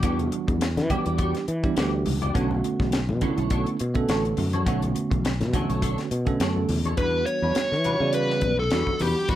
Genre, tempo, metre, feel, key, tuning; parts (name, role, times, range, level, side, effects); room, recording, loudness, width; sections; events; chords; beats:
electric jazz fusion; 104 BPM; 4/4; swing 55% on 16ths; E dorian; A4 = 437 Hz
bell-like tine electric piano; accompaniment; 0.0-9.4 s; D3 to D5; -28 LUFS; right 5 dB; fast stereo tremolo, phaser
clean electric guitar; stabs; 0.0-9.4 s; G3 to D5; -32 LUFS; left 2 dB; ensemble chorus
sustaining fretless electric bass; bass; 0.0-9.4 s; A1 to E3; -26 LUFS; left 1 dB
tight funk drum kit; drums; 0.0-9.4 s; hi-hat, kick drum, snare drum; -28 LUFS; left 1 dB
congas; percussion; 0.2-9.2 s; -33 LUFS; left 4 dB
smooth overdriven lead guitar; melody; 7.0-9.4 s; F#4 to C#5; -24 LUFS; left 1 dB
moderate studio reverb, RT60 0.5 s; -22 LUFS; side -12 dB against mid
0.0-7.0 A section; 7.0-9.4 B section
0.0 Em9; 2.4 Bm9; 7.0 Em9
| 0.04 0.62 1.20 1.78 | 2.36 2.94 3.51 4.09 | 4.67 5.25 5.83 6.41 | 6.99 7.56 8.14 8.72 | 9.30